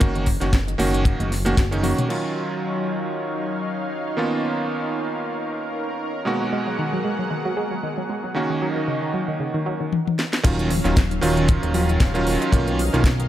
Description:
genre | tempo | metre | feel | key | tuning
nu-disco, nu disco | 115 BPM | 4/4 | swing 56% on 16ths | Eb minor | A4 = 442 Hz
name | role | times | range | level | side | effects
bright electric grand piano | accompaniment | 0.0-13.1 s | Cb3 to Gb4 | -24 LUFS | right 2 dB | sidechain pumping, tape echo
analog pluck | arpeggios | 0.0-2.0, 6.3-13.3 s | Db3 to Gb4 | -28 LUFS | equal | chorus, phaser, sidechain pumping, tape echo
fat analog bass | bass | 0.0-1.9, 10.4-13.3 s | Eb1 to B1 | -23 LUFS | equal | none
house drum kit | drums | 0.0-2.2, 9.9-13.3 s | crash cymbal, hi-hat, snare drum, toms | -27 LUFS | left 2 dB | none
kick drum | drums | 0.0-1.7, 10.4-13.2 s | none | -19 LUFS | equal | none
congas | percussion | 0.8-2.1 s | none | -31 LUFS | right 1 dB | none
lush unison pad | sustained chords | 2.1-13.3 s | Gb3 to Gb5 | -28 LUFS | equal | chorus, sidechain pumping
room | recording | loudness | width
light reverb, studio reverb | none | -20 LUFS | side -12 dB against mid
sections
0.0-2.1 A section; 2.1-10.4 B section; 10.4-13.3 C section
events
drum fill 1.8, 9.9-10.4; drop 10.4-13.3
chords
0.0 Gb6; 2.1 Ebm9; 4.2 Bmaj9#11; 6.3 Abm9; 8.4 Gb6; 10.4 Ebm9; 12.5 Bmaj9#11

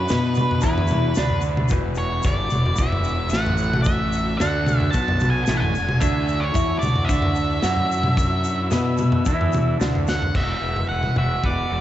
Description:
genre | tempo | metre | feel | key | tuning
psychedelic rock | 111 BPM | 4/4 | straight | E mixolydian | A4 = 439 Hz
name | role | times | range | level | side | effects
octave-fuzz lead guitar | melody | 0.0-11.8 s | B4 to A5 | -26 LUFS | equal | distortion, tape echo
dark studio string section | sustained chords | 0.0-11.8 s | F#3 to F#4 | -34 LUFS | right 2 dB | none
electric guitar through a small old amp | riff | 0.0-11.8 s | E2 to B4 | -26 LUFS | equal | phaser
fuzz fingered electric bass | bass | 0.0-11.8 s | E1 to B2 | -25 LUFS | equal | overdrive
crunchy breakbeat drum kit | drums | 0.1-11.6 s | crash cymbal, kick drum, snare drum, toms | -22 LUFS | equal | none
egg shaker | percussion | 0.1-10.2 s | none | -41 LUFS | left 14 dB | none
room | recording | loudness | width
moderate church reverb, RT60 3.7 s | dreamy mix soaked in reverb, nothing above 8.0 kHz | -18 LUFS | side -12 dB against mid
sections
0.0-10.4 A section; 10.4-11.8 B section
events
drum fill 10.1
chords
0.0 Dadd9; 1.7 Esus2; 6.0 Dadd9; 10.4 Eadd9

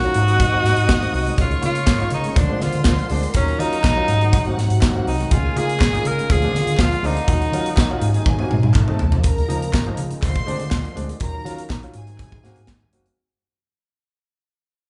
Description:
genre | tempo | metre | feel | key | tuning
disco | 122 BPM | 4/4 | straight | unclear | A4 = 440 Hz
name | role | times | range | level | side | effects
clear tenor saxophone | melody | 0.0-8.5 s | Db4 to Bb4 | -25 LUFS | equal | none
warm studio violin section | second line | 0.0-12.9 s | F4 to Eb6 | -33 LUFS | equal | none
warm baby grand piano | accompaniment | 0.0-13.1 s | Ab2 to Gb4 | -31 LUFS | equal | none
dark French horn section | sustained chords | 0.0-13.2 s | C3 to F4 | -33 LUFS | equal | none
hollow-body short-scale fingered electric bass | bass | 0.0-13.1 s | F1 to Eb3 | -25 LUFS | equal | tube saturation
modern studio drum kit | drums | 0.0-13.2 s | hi-hat, kick drum, snare drum, toms | -23 LUFS | equal | none
group handclap | percussion | 1.9-12.8 s | none | -39 LUFS | equal | none
room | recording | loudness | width
moderate large studio reverb, RT60 1.3 s | band playing live in one room, nothing above 11.0 kHz | -19 LUFS | mono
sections
0.0-9.2 A section; 9.2-13.2 B section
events
drum fill 8.3-9.2; fade-out 9.2-13.2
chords
0.2 Ab7; 1.4 Db6; 2.4 Bb7/D; 3.3 Ebm7; 4.1 Ab7; 5.3 Db6; 6.3 Bb7/D; 7.3 Ebm7; 8.0 Ab7; 8.7 F7; 9.2 Db6; 10.2 Bb7/D; 11.2 Ebm7; 11.9 Ab7

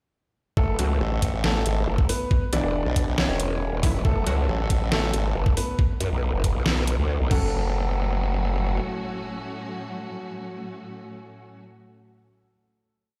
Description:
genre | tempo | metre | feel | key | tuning
heavy wobble dubstep | 138 BPM | 4/4 | half-time | F# minor | A4 = 441 Hz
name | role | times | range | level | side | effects
warm concert grand piano | melody | 0.6-11.6 s | A3 to D5 | -34 LUFS | equal | dub echo
growl bass | bass | 0.6-8.8 s | E1 to F#2 | -26 LUFS | equal | chorus, overdrive
electronic kick drum | drums | 0.6-7.4 s | none | -24 LUFS | equal | none
orchestra-hit-like synth stab | stabs | 0.8-4.4, 7.3-11.6 s | E3 to F#4 | -37 LUFS | equal | none
dubstep drum kit | drums | 0.8-7.4 s | crash cymbal, hi-hat, snare drum | -30 LUFS | equal | none
formant-sweep wobble bass | bass | 1.0-5.3 s | G#1 to B1 | -27 LUFS | equal | chorus, overdrive
zap | sound effects | 3.8-3.9 s | none | -38 LUFS | equal | none
warm studio string section | sustained chords | 4.0-11.6 s | A2 to F#4 | -36 LUFS | equal | sidechain pumping
room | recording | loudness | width
little or no reverb | played on a big sound system in a bare room, large studio reverb | -24 LUFS | mono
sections
0.6-7.5 drop; 7.5-11.0 final hit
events
drop 0.6-7.5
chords
0.6 F#m; 2.3 E5; 4.0 F#m; 5.8 Bm; 7.3 F#m

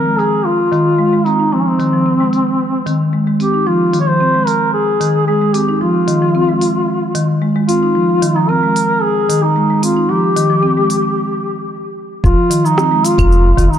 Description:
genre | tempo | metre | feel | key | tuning
organic downtempo | 112 BPM | 4/4 | straight | F minor | A4 = 439 Hz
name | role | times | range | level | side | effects
mellow duduk | melody | 0.0-13.8 s | C4 to Db5 | -15 LUFS | left 1 dB | ping-pong delay
marimba with soft mallets | arpeggios | 0.0-13.7 s | Eb3 to Eb4 | -16 LUFS | right 1 dB | low-pass filter
afro-pop drum kit | drums | 0.2-13.8 s | claves, hi-hat, rim click, shaker | -23 LUFS | equal | low-pass filter on hats, low-pass filter on perc, low-pass filter on snare
round analog bass | bass | 12.2-13.7 s | F1 | -12 LUFS | equal | sidechain pumping
electronic kick drum | drums | 12.2-13.7 s | none | -16 LUFS | equal | none
room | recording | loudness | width
moderate lush hall reverb, RT60 2.8 s | dark, warm production | -12 LUFS | side -9 dB against mid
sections
0.0-12.2 A section; 12.2-13.8 B section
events
break 11.2-12.2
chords
0.0 Fm7; 12.2 F7(no3)

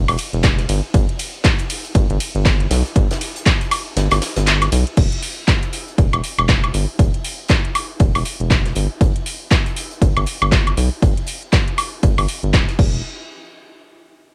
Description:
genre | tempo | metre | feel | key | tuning
deep house | 119 BPM | 4/4 | swing 59% on 16ths | E minor | A4 = 445 Hz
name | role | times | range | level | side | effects
rubbery square bass | bass | 0.0-13.0 s | D1 to B1 | -21 LUFS | equal | none
house drum kit | drums | 0.1-12.9 s | crash cymbal, handclaps, hi-hat, ride cymbal, woodblock | -24 LUFS | equal | none
huge arena drum kit | drums | 0.2-12.8 s | hi-hat, snare drum | -33 LUFS | equal | sidechain pumping on hats, high-pass filter on hats, high-pass filter on snare, high-pass filter on room
electronic kick drum | drums | 0.4-12.9 s | none | -18 LUFS | equal | none
room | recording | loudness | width
little or no reverb | home recording on cassette | -18 LUFS | mono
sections
0.0-5.0 A section; 5.0-13.0 B section; 13.0-14.3 C section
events
drop 0.0-5.0; kick drops out 4.0-5.0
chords
none

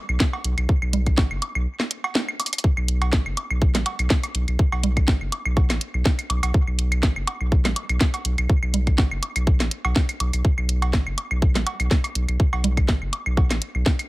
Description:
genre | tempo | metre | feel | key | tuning
minimal techno | 123 BPM | 4/4 | swing 54% on 16ths | unclear | A4 = 440 Hz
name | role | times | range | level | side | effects
saturated sub bass | bass | 0.1-13.8 s | F#1 to B1 | -23 LUFS | equal | tube saturation, sidechain pumping
claves, cowbell, woodblock and congas | percussion | 0.1-14.1 s | none | -28 LUFS | right 2 dB | tape echo
electronic kick drum | drums | 0.2-14.0 s | none | -19 LUFS | equal | none
garage drum kit | drums | 0.2-14.1 s | hi-hat, snare drum | -25 LUFS | equal | none
room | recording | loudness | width
digital ambience | none | -20 LUFS | side -20 dB against mid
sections
0.0-14.1 A section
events
break 1.7-2.6; drum fill 2.4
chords
none

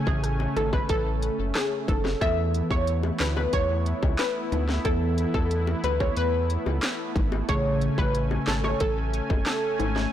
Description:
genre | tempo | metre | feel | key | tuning
dancehall | 91 BPM | 4/4 | straight | A major | A4 = 440 Hz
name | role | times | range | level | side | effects
marimba with medium mallets | accompaniment | 0.0-8.1 s | C#3 to A4 | -32 LUFS | right 1 dB | none
warm analog pad | sustained chords | 0.0-10.1 s | A3 to G#5 | -33 LUFS | right 1 dB | chorus, tremolo, sidechain pumping
analog pluck | melody | 0.1-9.9 s | G#4 to E5 | -29 LUFS | left 1 dB | chorus, ping-pong delay
round analog bass | bass | 0.1-10.1 s | F#1 to E2 | -28 LUFS | equal | none
island pop drum kit | drums | 0.1-10.1 s | handclaps, hi-hat, kick drum, rim click, snare drum | -28 LUFS | equal | none
bongos | percussion | 0.1-10.1 s | none | -34 LUFS | left 7 dB | none
room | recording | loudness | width
light reverb | blown-out, overdriven recording, overdrive | -23 LUFS | side -11 dB against mid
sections
0.0-10.1 A section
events
none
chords
0.0 Amaj7; 2.2 Esus4; 7.5 Amaj7

